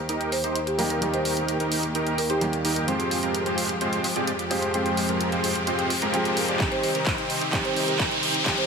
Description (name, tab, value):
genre	EDM, festival progressive house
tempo	129 BPM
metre	4/4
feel	straight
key	unclear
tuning	A4 = 444 Hz
part	warm concert grand piano	accompaniment	0.0-8.7 s	Eb3 to G4	-29 LUFS	right 2 dB	sidechain pumping, dub echo
part	clear symphonic string section	sustained chords	0.0-8.7 s	Eb2 to G4	-32 LUFS	left 1 dB	sidechain pumping
part	riser	sound effects	1.9-8.7 s	none	-31 LUFS	equal	none
part	dense compressed supersaw	riff	0.1-8.7 s	Ab3 to D5	-27 LUFS	right 1 dB	sidechain pumping, low-pass filter, dub echo
part	big-room dance drum kit	drums	0.1-8.7 s	handclaps, hi-hat	-29 LUFS	equal	small room reverb
part	marimba with medium mallets	melody	0.3-2.9, 6.7-8.7 s	G4 to C5	-31 LUFS	right 1 dB	vintage 12-bit sampler grit, dub echo
part	electronic kick drum	drums	6.6-8.6 s	none	-29 LUFS	equal	small room reverb
room	moderate lush hall reverb, RT60 1.8 s, studio reverb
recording	high-pass filter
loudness	-22 LUFS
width	side -5 dB against mid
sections	0.0-8.7 A section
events	build-up 0.0-8.7; filter sweep on supersaw synth 0.0-8.7; filter sweep 0.0-8.7; riser 1.9-8.7; drum fill 6.6-8.7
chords	0.0 Eb; 2.9 Fmadd9; 6.6 Cm